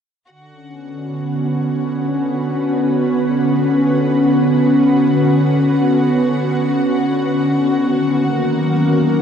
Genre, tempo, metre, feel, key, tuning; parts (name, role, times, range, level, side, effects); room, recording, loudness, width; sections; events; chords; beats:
ambient; free time; B minor; A4 = 442 Hz
ethereal airy pad; sustained chords; 0.9-9.2 s; D3 to B4; -14 LUFS; equal; ensemble chorus, built-in reverb
warm symphonic violin section; texture; 0.3-9.2 s; F#4 to F#5; -32 LUFS; equal
wet huge ambient reverb, RT60 7.8 s; in a vast, echoing space, cassette tape; -14 LUFS; side -8 dB against mid
0.3-9.2 A section
fade-in on violin section 0.3-9.2
0.3 Bmadd9; 7.5 D#m
free time